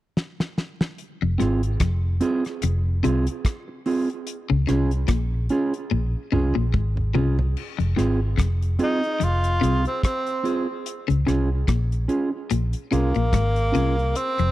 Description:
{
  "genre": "roots reggae",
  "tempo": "73 BPM",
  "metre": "4/4",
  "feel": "swing 57% on 16ths",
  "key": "F minor",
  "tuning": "A4 = 440 Hz",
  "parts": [
    { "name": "damped 70s drum kit", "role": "drums", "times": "0.2-14.5 s", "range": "crash cymbal, hi-hat, kick drum, rim click, snare drum, toms", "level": "-25 LUFS", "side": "equal", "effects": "none" },
    { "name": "clean electric guitar", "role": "riff", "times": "1.2-14.5 s", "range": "F2 to Db3", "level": "-27 LUFS", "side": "left 7 dB", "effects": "none" },
    { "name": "vintage muted fingered electric bass", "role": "bass", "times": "1.2-14.5 s", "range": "F1 to Db2", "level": "-22 LUFS", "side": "equal", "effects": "none" },
    { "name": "mellow electric guitar", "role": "accompaniment", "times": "1.4-14.0 s", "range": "C4 to Ab4", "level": "-26 LUFS", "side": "right 3 dB", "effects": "spring reverb, tape echo" },
    { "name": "breathy tenor saxophone", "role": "melody", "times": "8.8-14.5 s", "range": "Bb3 to F4", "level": "-25 LUFS", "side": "equal", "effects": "tape echo" }
  ],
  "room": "little or no reverb",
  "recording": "dry, close 1970s-style studio recording",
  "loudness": "-21 LUFS",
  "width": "side -15 dB against mid",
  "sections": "1.0-7.6 A section; 7.6-14.5 B section",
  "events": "drum fill 0.2-1.0, 5.9-7.6",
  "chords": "0.0 N.C.; 1.0 Fm; 4.3 Db; 7.6 Fm; 10.9 Db"
}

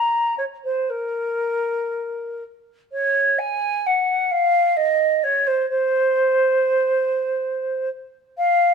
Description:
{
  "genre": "classical, baroque-style fantasia for unaccompanied flute",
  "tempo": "57-69 BPM",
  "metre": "3/4",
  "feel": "rubato",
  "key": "Bb minor",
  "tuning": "A4 = 440 Hz",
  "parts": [
    { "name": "mellow hollow concert flute", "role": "solo", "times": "0.0-8.7 s", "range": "Bb4 to Bb5", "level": "-18 LUFS", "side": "right 1 dB", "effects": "none" }
  ],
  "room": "wet stone room reverb, RT60 1.3 s",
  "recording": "none",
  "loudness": "-18 LUFS",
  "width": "side -6 dB against mid",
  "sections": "0.0-2.9 A section; 2.9-8.7 B section",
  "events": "none",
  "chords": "none"
}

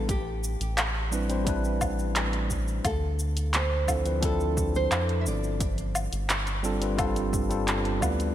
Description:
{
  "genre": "sunset chillout",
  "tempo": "87 BPM",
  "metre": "4/4",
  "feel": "straight",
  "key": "unclear",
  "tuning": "A4 = 440 Hz",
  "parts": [
    { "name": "nylon-string guitar", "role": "melody", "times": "0.0-7.6 s", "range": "G4 to E5", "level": "-33 LUFS", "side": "right 2 dB", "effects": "vintage 12-bit sampler grit, digital delay" },
    { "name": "tine electric piano", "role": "accompaniment", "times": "0.0-8.3 s", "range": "F3 to D5", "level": "-31 LUFS", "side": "equal", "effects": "auto-pan, digital delay" },
    { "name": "round analog bass", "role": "bass", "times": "0.0-8.3 s", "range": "G1 to F2", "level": "-29 LUFS", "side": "equal", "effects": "none" },
    { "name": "deep house drum kit", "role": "drums", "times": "0.1-8.3 s", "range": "handclaps, hi-hat, shaker, woodblock", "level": "-31 LUFS", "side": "equal", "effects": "overdrive, gated reverb" },
    { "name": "electronic kick drum", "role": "drums", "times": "0.1-8.2 s", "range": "none", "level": "-32 LUFS", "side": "equal", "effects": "overdrive" }
  ],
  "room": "light reverb, digital ambience",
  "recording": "bright 1980s-style digital production",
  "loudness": "-25 LUFS",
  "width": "side -12 dB against mid",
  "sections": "0.0-8.3 A section",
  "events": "none",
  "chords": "0.1 Am11; 2.8 G7sus4"
}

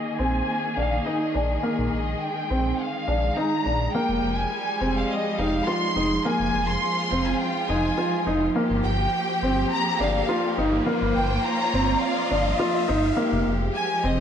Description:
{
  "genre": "piano and strings electronica",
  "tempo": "104 BPM",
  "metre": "4/4",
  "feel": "straight",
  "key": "F minor",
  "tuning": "A4 = 440 Hz",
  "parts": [
    { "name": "warm symphonic violin section", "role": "melody", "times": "0.0-14.2 s", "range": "Eb5 to C6", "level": "-27 LUFS", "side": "equal", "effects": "low-pass filter" },
    { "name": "clear studio string section", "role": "sustained chords", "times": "0.0-14.2 s", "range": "Eb3 to Ab4", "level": "-29 LUFS", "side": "equal", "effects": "low-pass filter" },
    { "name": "dark baby grand piano", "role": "riff", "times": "0.2-14.2 s", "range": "Bb3 to F4", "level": "-26 LUFS", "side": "equal", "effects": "digital delay" },
    { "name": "dark detuned saw bass", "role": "bass", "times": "0.2-14.2 s", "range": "F1 to Bb1", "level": "-27 LUFS", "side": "equal", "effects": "none" },
    { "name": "riser", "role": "sound effects", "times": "6.8-13.2 s", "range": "none", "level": "-34 LUFS", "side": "right 1 dB", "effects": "none" }
  ],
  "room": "moderate lush hall reverb, RT60 2.4 s",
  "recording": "dark, warm production",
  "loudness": "-21 LUFS",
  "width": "side -8 dB against mid",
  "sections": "0.0-13.2 A section; 13.2-14.2 B section",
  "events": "build-up 0.0-13.2; riser 6.8-13.2; drop 13.2-14.2",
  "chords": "0.0 Bb7sus4; 3.9 Fmadd9; 8.6 Gm7; 13.2 Fmadd9"
}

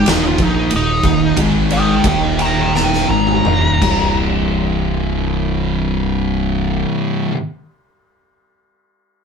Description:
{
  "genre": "stoner and doom metal",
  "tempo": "79-94 BPM",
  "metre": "4/4",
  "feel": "straight",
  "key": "C minor",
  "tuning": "A4 = 440 Hz",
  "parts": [
    { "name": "fuzz lead guitar", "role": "melody", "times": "0.0-4.2 s", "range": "Eb4 to Bb5", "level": "-18 LUFS", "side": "right 1 dB", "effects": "wah, distortion" },
    { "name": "thick fuzz guitar", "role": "riff", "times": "0.0-7.4 s", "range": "C2 to Bb3", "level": "-16 LUFS", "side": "equal", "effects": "distortion" },
    { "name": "growling fingered electric bass", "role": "bass", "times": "0.0-6.8 s", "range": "C1 to Bb1", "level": "-22 LUFS", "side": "equal", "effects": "overdrive" },
    { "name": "oversized low-tuned drum kit", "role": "drums", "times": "0.1-4.0 s", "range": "crash cymbal, kick drum, ride cymbal, snare drum, toms", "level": "-19 LUFS", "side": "equal", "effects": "none" }
  ],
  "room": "moderate studio reverb, RT60 0.6 s",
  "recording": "band playing live in one room",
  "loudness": "-14 LUFS",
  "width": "side -6 dB against mid",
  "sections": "0.0-4.2 A section; 4.2-7.2 B section",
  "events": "slowing down 0.0-4.2; lead electric guitar solo 0.0-4.2; drum fill 2.7-4.2",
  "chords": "0.1 Eb5; 1.4 Ab5; 2.0 Eb5; 3.8 C5"
}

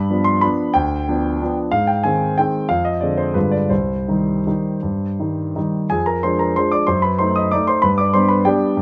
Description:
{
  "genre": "classical, piano waltz",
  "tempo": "157-202 BPM",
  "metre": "3/4",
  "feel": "rubato",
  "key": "C minor",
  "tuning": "A4 = 442 Hz",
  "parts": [
    { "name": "warm concert grand piano", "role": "solo", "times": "0.0-8.8 s", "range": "C2 to D#6", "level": "-18 LUFS", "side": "equal", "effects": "none" }
  ],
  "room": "little or no reverb",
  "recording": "close, detailed microphones",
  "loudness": "-18 LUFS",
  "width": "mono",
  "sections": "0.0-5.9 A section; 5.9-8.8 B section",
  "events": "none",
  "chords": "0.0 G7; 1.7 Ab; 2.7 Dm7b5/F; 3.4 G7b9; 3.7 Cm; 5.9 Ddim/F; 6.9 F#dim7; 7.8 G"
}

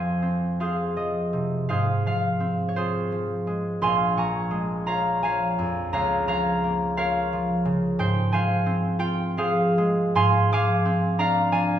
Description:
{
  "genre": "classical, solo harp piece",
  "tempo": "57 BPM (dotted quarters)",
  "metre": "6/8",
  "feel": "uneven beats, rubato",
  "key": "unclear",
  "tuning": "A4 = 440 Hz",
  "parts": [
    { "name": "concert harp", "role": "solo", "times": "0.0-11.8 s", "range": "Bb1 to D6", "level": "-21 LUFS", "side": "equal", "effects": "none" }
  ],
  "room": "wet recital hall reverb, RT60 1.7 s",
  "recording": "heard from further back in the room",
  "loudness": "-21 LUFS",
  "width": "side -10 dB against mid",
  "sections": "0.0-11.8 A section",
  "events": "none",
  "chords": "0.0 Fm; 1.7 Fm/Ab; 3.8 Bbm7; 5.9 Bbm/Db; 8.0 Fm/Ab; 10.2 Dm7b5/Ab"
}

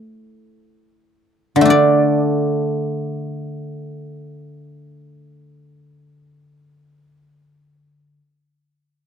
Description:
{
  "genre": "chinese traditional, Chinese solo plucked strings",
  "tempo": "free time",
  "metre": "none",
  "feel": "none",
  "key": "unclear",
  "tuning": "A4 = 440 Hz",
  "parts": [
    { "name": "guzheng", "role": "solo", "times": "0.0-8.2 s", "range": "D3 to D5", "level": "-16 LUFS", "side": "equal", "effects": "none" }
  ],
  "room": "light reverb",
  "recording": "dry, close 1970s-style studio recording",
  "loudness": "-15 LUFS",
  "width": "side -8 dB against mid",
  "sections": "0.0-1.7 A section; 1.7-5.6 B section",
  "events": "slowing down 0.0-1.7",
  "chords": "none"
}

